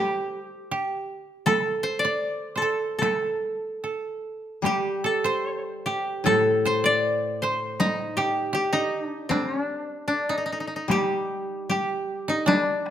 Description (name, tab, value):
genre	japanese traditional, Japanese chamber music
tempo	72-81 BPM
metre	2/4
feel	rubato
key	unclear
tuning	A4 = 439 Hz
part	koto	melody	0.0-12.9 s	D4 to G5	-26 LUFS	left 2 dB	none
part	koto	second line	0.0-12.9 s	D4 to D5	-27 LUFS	right 3 dB	none
part	taiko ensemble	percussion	1.5-12.9 s	none	-28 LUFS	left 2 dB	none
part	koto	accompaniment	4.6-8.5, 10.9-12.9 s	A2 to G3	-29 LUFS	left 3 dB	none
room	moderate recital hall reverb, RT60 1.4 s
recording	close, detailed microphones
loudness	-23 LUFS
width	side -10 dB against mid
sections	0.0-10.9 A section; 10.9-12.9 B section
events	none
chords	none